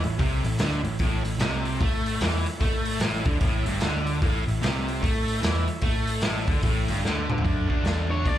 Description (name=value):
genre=blues rock power trio and southern rock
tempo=149 BPM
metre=4/4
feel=swing 62% on 8ths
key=A major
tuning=A4 = 440 Hz
part: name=tonewheel organ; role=sustained chords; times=0.0-8.4 s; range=A3 to F5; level=-39 LUFS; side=right 4 dB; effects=slow rotary speaker, overdrive
part: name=fuzz guitar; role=riff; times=0.0-8.4 s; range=G2 to D4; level=-28 LUFS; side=equal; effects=distortion
part: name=vintage muted picked electric bass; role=bass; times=0.0-8.4 s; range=G1 to A2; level=-28 LUFS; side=equal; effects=none
part: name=raw garage drum kit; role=drums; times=0.0-8.4 s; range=hi-hat, kick drum, snare drum, toms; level=-26 LUFS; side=equal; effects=none
part: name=octave-fuzz lead guitar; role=melody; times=8.1-8.4 s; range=C#5 to D5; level=-28 LUFS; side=left 2 dB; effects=distortion
room=little or no reverb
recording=live gig heard through the venue's PA, club reverb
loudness=-22 LUFS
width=side -12 dB against mid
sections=0.0-7.4 A section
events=drum fill 7.0-7.4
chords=0.0 A; 7.4 D